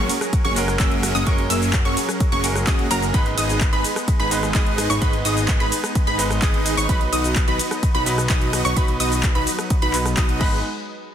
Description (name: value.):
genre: EDM, festival progressive house.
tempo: 128 BPM.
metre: 4/4.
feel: straight.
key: G# minor.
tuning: A4 = 441 Hz.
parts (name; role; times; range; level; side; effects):
bright concert grand piano; accompaniment; 0.0-10.7 s; F#3 to B4; -27 LUFS; right 2 dB; vintage 12-bit sampler grit, sidechain pumping, dub echo.
lush unison pad; sustained chords; 0.0-10.6 s; F#3 to D#5; -31 LUFS; equal; chorus, sidechain pumping.
wide unison pluck; arpeggios; 0.0-10.6 s; A#5 to E6; -27 LUFS; right 1 dB; cassette tape, sidechain pumping, dub echo.
dense compressed supersaw; riff; 0.0-10.6 s; A#3 to E5; -26 LUFS; right 1 dB; sidechain pumping, dub echo.
fat analog bass; bass; 0.0-10.6 s; F#1 to F#2; -25 LUFS; equal; sidechain pumping.
big-room dance drum kit; drums; 0.1-10.5 s; crash cymbal, handclaps, hi-hat, ride cymbal, rim click, shaker; -26 LUFS; equal; overdrive.
electronic kick drum; drums; 0.3-10.5 s; none; -20 LUFS; equal; overdrive.
room: light reverb, digital ambience.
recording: dense, heavily limited modern master.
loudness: -17 LUFS.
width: side -9 dB against mid.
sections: 0.0-10.6 A section.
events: drop 0.0-10.6.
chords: 0.0 F#add9; 3.1 G#m; 6.9 B; 10.4 G#m; 10.6 N.C..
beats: 0.33 0.80 | 1.27 1.74 2.20 2.67 | 3.14 3.61 4.08 4.55 | 5.02 5.49 5.95 6.42 | 6.89 7.36 7.83 8.30 | 8.77 9.23 9.70 10.17 | 10.64.